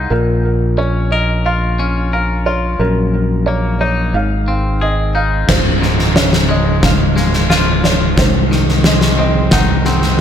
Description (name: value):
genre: post-rock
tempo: 89 BPM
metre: 4/4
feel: straight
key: Db major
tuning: A4 = 440 Hz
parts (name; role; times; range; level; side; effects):
- felt-muted upright piano; arpeggios; 0.0-10.2 s; Bb4 to Gb5; -22 LUFS; right 5 dB; tape echo
- twangy electric guitar; arpeggios; 0.0-10.2 s; Db2 to Bb4; -18 LUFS; left 3 dB; tape echo
- growling fingered electric bass; bass; 0.0-10.2 s; Db1 to C2; -16 LUFS; equal; overdrive
- oversized low-tuned drum kit; drums; 5.5-10.1 s; crash cymbal, kick drum, snare drum; -13 LUFS; equal; none
room: light reverb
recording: none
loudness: -12 LUFS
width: side -9 dB against mid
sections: 0.0-5.5 A section; 5.5-10.2 B section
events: none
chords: 0.1 Bbm; 2.8 Gb6/Bb; 4.1 Ab; 5.5 Dbmaj7; 8.2 Ab7/C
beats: | 0.10 0.78 1.45 2.12 | 2.80 3.47 4.15 4.82 | 5.49 6.17 6.84 7.51 | 8.18 8.86 9.53 10.20